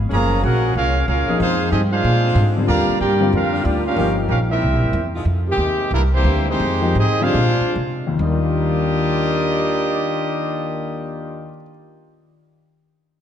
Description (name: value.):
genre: jazz, big band swing.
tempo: 131-187 BPM.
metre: 4/4.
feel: swing 64% on 8ths.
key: Eb major.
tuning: A4 = 441 Hz.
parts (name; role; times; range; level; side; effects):
upright bass; bass; 0.0-11.5 s; Gb1 to C3; -20 LUFS; equal; none.
clear trumpet section; melody; 0.1-11.6 s; G3 to Bb5; -22 LUFS; right 1 dB; none.
clear trombone section; second line; 0.1-11.5 s; C3 to G4; -23 LUFS; equal; none.
clear saxophone section; sustained chords; 0.1-5.2 s; D3 to Ab4; -30 LUFS; equal; none.
warm baby grand piano; accompaniment; 1.3-11.7 s; Eb2 to Ab4; -24 LUFS; left 4 dB; none.
room: moderate concert hall reverb, RT60 2.2 s.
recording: dark, warm production.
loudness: -16 LUFS.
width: side -9 dB against mid.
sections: 0.0-5.3 A section; 5.3-8.2 B section; 8.2-11.9 C section.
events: slowing down 5.3-8.2.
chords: 0.1 Gbmaj9#11; 1.4 Fm9; 2.0 Bb13; 2.7 Ebmaj9; 4.0 Gm7b5; 4.6 C7; 5.3 Fm9; 5.9 C9; 6.6 Fm9; 7.3 Bb9; 8.2 Ebmaj9.